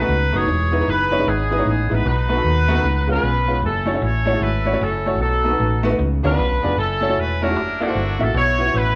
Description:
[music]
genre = uptempo gospel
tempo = 152 BPM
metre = 4/4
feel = swing 64% on 8ths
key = unclear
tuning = A4 = 440 Hz
[part]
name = clear horn section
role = melody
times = 0.0-9.0 s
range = A3 to C#5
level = -24 LUFS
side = equal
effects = none
[part]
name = warm upright piano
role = accompaniment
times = 0.0-9.0 s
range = B2 to E5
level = -24 LUFS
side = equal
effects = none
[part]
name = hollow-body short-scale fingered electric bass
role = bass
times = 0.0-9.0 s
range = E1 to D#2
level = -23 LUFS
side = equal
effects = none
[sound]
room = moderate large studio reverb, RT60 1.2 s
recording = band playing live in one room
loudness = -19 LUFS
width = mono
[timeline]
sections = 0.0-9.0 A section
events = none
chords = 0.5 Emaj7; 2.1 B7; 2.8 C#7; 3.6 F#m7; 5.2 B7; 6.0 C#7b9; 6.8 F#m7; 7.6 F#7alt; 8.3 Bsus4

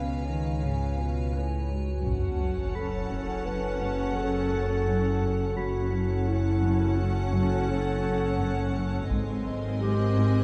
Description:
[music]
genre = cinematic, suspense film score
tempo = 85 BPM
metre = 5/4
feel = straight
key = F# dorian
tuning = A4 = 439 Hz
[part]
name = warm studio violin section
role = melody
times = 0.0-10.4 s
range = F5 to A5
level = -46 LUFS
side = equal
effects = none
[part]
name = dark symphonic viola section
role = accompaniment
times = 0.0-10.4 s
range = B#3 to Cb5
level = -37 LUFS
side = equal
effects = none
[part]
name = icy glass pad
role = sustained chords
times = 0.0-10.4 s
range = A4 to Ab5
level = -41 LUFS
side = equal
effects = chorus, built-in reverb
[part]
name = rich studio cello section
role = bass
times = 0.0-10.4 s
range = F#2 to Eb3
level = -36 LUFS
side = equal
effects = none
[part]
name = analog drone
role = drone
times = 0.0-10.4 s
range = F#1 to Db2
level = -34 LUFS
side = equal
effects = chorus
[part]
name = celesta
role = texture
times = 0.0-9.1 s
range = B5 to B6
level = -48 LUFS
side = equal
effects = none
[part]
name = rich symphonic double bass section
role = bass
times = 0.6-10.4 s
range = F#1 to Ab1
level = -34 LUFS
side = equal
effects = none
[part]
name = mellow clarinet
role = second line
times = 1.7-10.4 s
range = E4 to B4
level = -33 LUFS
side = equal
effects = none
[part]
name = warm chamber violin section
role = second line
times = 2.0-10.4 s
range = D#5 to F#5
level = -42 LUFS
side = equal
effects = none
[part]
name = warm symphonic cello section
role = riff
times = 2.0-10.4 s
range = F#2 to G#3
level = -36 LUFS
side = equal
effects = none
[part]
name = taiko ensemble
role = drums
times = 2.1-3.4, 9.1-10.4 s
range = none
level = -36 LUFS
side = equal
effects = none
[part]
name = sub drop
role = sound effects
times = 2.1-5.6 s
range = none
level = -38 LUFS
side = equal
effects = none
[part]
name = warm symphonic violin section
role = texture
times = 9.1-10.4 s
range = B#5 to F#6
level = -49 LUFS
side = equal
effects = none
[sound]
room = moderate scoring stage reverb, RT60 1.8 s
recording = dark, warm production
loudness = -27 LUFS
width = mono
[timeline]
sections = 0.0-2.0 A section; 2.0-10.4 B section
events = impact 2.0-5.6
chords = 0.0 Db7; 2.0 F#m; 9.1 G#add9

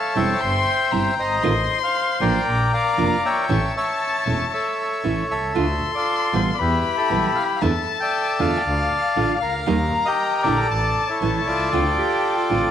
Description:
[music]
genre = tango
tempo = 117 BPM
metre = 4/4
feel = rubato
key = D minor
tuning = A4 = 440 Hz
[part]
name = bandoneon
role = melody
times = 0.0-12.7 s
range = E4 to A5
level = -22 LUFS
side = equal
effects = none
[part]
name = warm violin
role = second line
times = 0.0-12.7 s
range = F5 to C6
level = -25 LUFS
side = left 8 dB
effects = none
[part]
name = nylon-string guitar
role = accompaniment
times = 0.2-12.7 s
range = B2 to G4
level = -25 LUFS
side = right 5 dB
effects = none
[part]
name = clear double bass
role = bass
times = 0.2-12.7 s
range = E1 to E2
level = -25 LUFS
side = equal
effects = none
[part]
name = clear clarinet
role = second line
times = 12.0-12.7 s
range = F4 to G4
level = -27 LUFS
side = right 7 dB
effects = none
[sound]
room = moderate echo chamber reverb, RT60 1.9 s, small room ambience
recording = 1960s-style stereo with parts hard left and right, vinyl crackle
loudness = -18 LUFS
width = side -9 dB against mid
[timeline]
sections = 0.0-12.7 A section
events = none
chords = 0.4 C/G; 1.4 F7/A; 2.5 Bb; 3.5 A; 5.6 Dm; 6.6 Em; 7.6 Asus4/E; 8.7 Dm; 9.7 Eb; 10.7 Asus4; 11.2 A; 11.7 Dm7

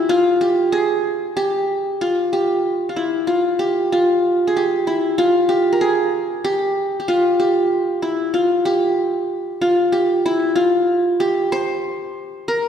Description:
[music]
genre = arabic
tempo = 94 BPM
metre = 4/4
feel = straight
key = unclear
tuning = A4 = 442 Hz
[part]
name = qanun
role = solo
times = 0.0-12.7 s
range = E4 to C5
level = -16 LUFS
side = equal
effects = slapback echo
[sound]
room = wet concert hall reverb, RT60 2.3 s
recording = heard from further back in the room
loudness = -16 LUFS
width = side -8 dB against mid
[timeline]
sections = 0.0-12.7 A section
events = none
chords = none

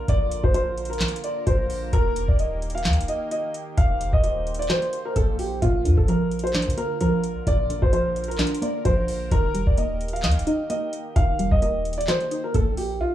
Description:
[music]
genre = hip hop, trap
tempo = 130 BPM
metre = 4/4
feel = half-time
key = unclear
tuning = A4 = 441 Hz
[part]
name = dark grand piano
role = melody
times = 0.0-13.1 s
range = F4 to F5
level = -26 LUFS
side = equal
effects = low-pass filter, tape echo
[part]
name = sweeping resonant pad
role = sustained chords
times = 0.0-13.1 s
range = D3 to C5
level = -35 LUFS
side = equal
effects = chorus, phaser
[part]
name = clean 808-style bass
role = bass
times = 0.1-13.0 s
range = Eb1 to D3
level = -25 LUFS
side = equal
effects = none
[part]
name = booming analog drum machine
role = drums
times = 0.1-12.9 s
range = handclaps, hi-hat, kick drum, snare drum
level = -24 LUFS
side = equal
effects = none
[part]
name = warbly dusty pluck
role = accompaniment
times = 5.6-13.0 s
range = Bb2 to Eb5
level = -28 LUFS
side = right 1 dB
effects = chorus, low-pass filter
[sound]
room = digital ambience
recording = dry, gritty hardware recording, small room ambience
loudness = -20 LUFS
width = side -12 dB against mid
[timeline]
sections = 0.0-13.0 A section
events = none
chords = 0.0 Bb; 1.9 Eb; 5.6 Bb; 9.3 Eb

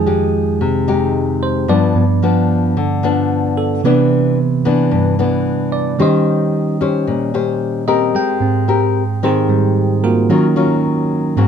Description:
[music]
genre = bossa nova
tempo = 112 BPM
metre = 4/4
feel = straight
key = Ab major from 8.1 s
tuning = A4 = 440 Hz
[part]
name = bell-like tine electric piano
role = accompaniment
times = 0.0-11.5 s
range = F2 to G5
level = -16 LUFS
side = right 5 dB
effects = none
[part]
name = nylon-string guitar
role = accompaniment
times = 0.0-11.5 s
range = G2 to C5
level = -16 LUFS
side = left 6 dB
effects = none
[sound]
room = light reverb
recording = none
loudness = -13 LUFS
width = side -7 dB against mid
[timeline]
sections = 0.0-8.1 A section; 8.1-11.5 A section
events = tine electric piano solo 0.0-11.5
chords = 0.0 Fm9; 1.7 G7; 3.8 Cmaj9; 6.0 Eb6; 8.1 Abmaj9; 10.3 Ebm9

